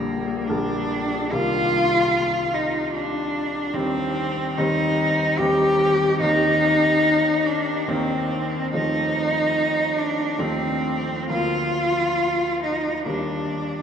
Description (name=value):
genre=classical, romantic duo for cello and grand piano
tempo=72 BPM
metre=3/4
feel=uneven beats, rubato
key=Bb major from 6.2 s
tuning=A4 = 441 Hz
part: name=rich cello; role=melody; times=0.0-13.8 s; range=Bb3 to G4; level=-21 LUFS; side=equal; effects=none
part: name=bright grand piano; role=accompaniment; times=0.0-13.8 s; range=Bb1 to C4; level=-26 LUFS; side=equal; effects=none
room=wet cathedral reverb, RT60 4.9 s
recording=in a vast, echoing space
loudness=-19 LUFS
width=side -8 dB against mid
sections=0.0-13.8 A section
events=none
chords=0.0 Gm/Bb; 1.3 Cm7; 3.7 Cm/Eb; 6.2 Cm7/Eb; 8.7 F7/Eb; 11.3 Bb/D; 13.1 Eb